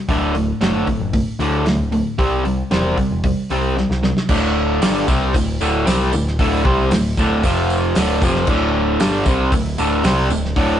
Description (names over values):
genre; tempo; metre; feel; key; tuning
classic rock; 114 BPM; 4/4; straight; unclear; A4 = 440 Hz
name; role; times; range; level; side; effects
overdriven semi-hollow guitar; riff; 0.0-10.8 s; D2 to C4; -18 LUFS; equal; none
growling picked electric bass; bass; 0.1-10.8 s; D1 to D2; -22 LUFS; equal; overdrive
damped 70s drum kit; drums; 0.1-10.7 s; crash cymbal, hi-hat, kick drum, snare drum; -21 LUFS; equal; none
tambourine; percussion; 4.3-10.6 s; none; -34 LUFS; right 5 dB; none
room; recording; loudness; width
moderate stone room reverb, RT60 1.1 s; rough rehearsal-room recording, tube saturation, nothing above 10.3 kHz; -15 LUFS; side -10 dB against mid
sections
0.0-4.3 A section; 4.3-10.8 B section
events
drum fill 3.8-4.3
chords
0.1 D; 2.2 C; 4.3 D5; 7.4 F5; 8.0 D5